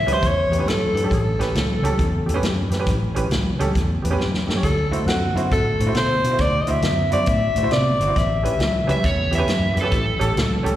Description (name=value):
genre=electric blues shuffle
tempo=136 BPM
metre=4/4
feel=swing 66% on 8ths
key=A mixolydian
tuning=A4 = 440 Hz
part: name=mellow tenor saxophone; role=melody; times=0.0-9.5 s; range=F#4 to E5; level=-22 LUFS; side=left 1 dB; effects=slapback echo
part: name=overdriven semi-hollow guitar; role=riff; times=0.0-10.8 s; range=A2 to B3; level=-26 LUFS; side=left 2 dB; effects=none
part: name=clear upright piano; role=accompaniment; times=0.1-10.7 s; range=C#4 to C#5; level=-27 LUFS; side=right 4 dB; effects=slapback echo
part: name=vintage muted fingered electric bass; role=bass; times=0.1-10.8 s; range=G1 to C3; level=-23 LUFS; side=equal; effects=none
part: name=vintage drum kit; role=drums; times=0.1-10.7 s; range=hi-hat, kick drum, snare drum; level=-25 LUFS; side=equal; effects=slapback echo
part: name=overdriven slide guitar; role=second line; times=8.9-10.6 s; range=A4 to E5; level=-24 LUFS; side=right 3 dB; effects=slapback echo
room=studio reverb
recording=live gig heard through the venue's PA, recital hall reverb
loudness=-18 LUFS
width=side -12 dB against mid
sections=0.0-10.8 A section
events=drum fill 4.2-4.6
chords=0.0 A7; 4.6 D7; 8.2 A7